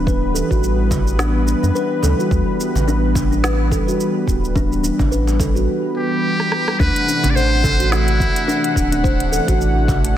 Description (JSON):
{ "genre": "organic downtempo", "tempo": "107 BPM", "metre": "4/4", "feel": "swing 57% on 16ths", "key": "D mixolydian", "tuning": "A4 = 440 Hz", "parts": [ { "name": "warm analog pad", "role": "sustained chords", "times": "0.0-10.2 s", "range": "C3 to F#5", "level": "-22 LUFS", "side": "left 2 dB", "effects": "chorus, sidechain pumping" }, { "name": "kalimba", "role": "arpeggios", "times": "0.0-9.6 s", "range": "D4 to C5", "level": "-22 LUFS", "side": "right 1 dB", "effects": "low-pass filter, digital delay" }, { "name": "round analog bass", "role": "bass", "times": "0.0-10.2 s", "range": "D1 to F#2", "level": "-19 LUFS", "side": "equal", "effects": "sidechain pumping" }, { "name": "electronic kick drum", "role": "drums", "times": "0.1-10.0 s", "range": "none", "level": "-21 LUFS", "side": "equal", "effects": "none" }, { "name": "organic electronic drum kit", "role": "drums", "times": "0.1-10.1 s", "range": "hi-hat, rim click, shaker, snare drum", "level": "-26 LUFS", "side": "right 1 dB", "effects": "none" }, { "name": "cajon", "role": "percussion", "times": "0.9-10.0 s", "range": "none", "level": "-27 LUFS", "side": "right 3 dB", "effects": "none" }, { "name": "trumpet with metal mute", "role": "melody", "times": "6.0-8.8 s", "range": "E4 to D5", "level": "-21 LUFS", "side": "equal", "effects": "digital delay" } ], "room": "light reverb, studio ambience", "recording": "dense, heavily limited modern master", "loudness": "-15 LUFS", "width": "side -11 dB against mid", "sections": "0.0-6.8 A section; 6.8-10.2 B section", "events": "drum fill 6.4-6.8", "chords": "0.0 Em/D; 6.8 D9" }